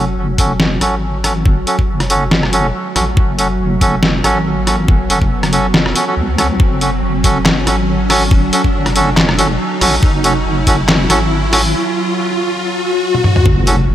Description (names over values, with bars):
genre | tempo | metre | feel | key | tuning
deep dubstep | 140 BPM | 4/4 | swing 55% on 16ths, half-time | F# minor | A4 = 440 Hz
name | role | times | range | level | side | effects
bowed-like drone | sustained chords | 0.0-13.9 s | F#3 | -21 LUFS | right 2 dB | built-in reverb
melodica | stabs | 0.0-13.8 s | C#4 to A4 | -18 LUFS | right 1 dB | low-pass filter, dub echo
deep soft wobble bass | bass | 0.0-13.9 s | F#1 to C#2 | -18 LUFS | equal | chorus, tube saturation
riser and impact | sound effects | 2.0-13.9 s | none | -21 LUFS | left 2 dB | none
electronic kick drum | drums | 0.4-10.8, 13.5-13.6 s | none | -12 LUFS | equal | none
trip hop sampler-style drum kit | drums | 0.4-13.8 s | handclaps, hi-hat, rim click, snare drum, toms | -16 LUFS | equal | none
room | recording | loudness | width
light reverb, digital ambience | none | -11 LUFS | side -12 dB against mid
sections
0.0-13.5 A section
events
build-up 0.0-13.5; filter sweep on melodica 0.0-13.5; riser 2.0-13.5; break 11.7-13.5; drum fill 13.1-13.5; impact 13.5-13.9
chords
0.0 F#m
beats
0.17 0.60 1.03 | 1.46 1.89 2.31 2.74 | 3.17 3.60 4.03 4.46 | 4.88 5.31 5.74 6.17 | 6.60 7.03 7.46 7.88 | 8.31 8.74 9.17 9.60 | 10.03 10.46 10.88 11.31 | 11.74 12.17 12.60 13.03 | 13.46 13.88